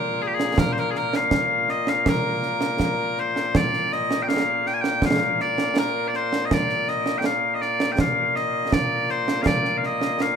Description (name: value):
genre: scottish traditional, Scottish pipe music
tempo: 81 BPM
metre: 2/4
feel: straight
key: Bb major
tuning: A4 = 440 Hz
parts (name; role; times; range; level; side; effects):
- loud bright bagpipes; melody; 0.0-10.4 s; Bb2 to Ab5; -22 LUFS; left 2 dB; tape echo
- concert snare drum and concert bass drum; drums; 0.4-10.4 s; none; -24 LUFS; right 2 dB; none
room: light reverb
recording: close, detailed microphones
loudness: -20 LUFS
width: side -7 dB against mid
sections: 0.0-3.5 A section; 3.5-10.4 B section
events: none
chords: none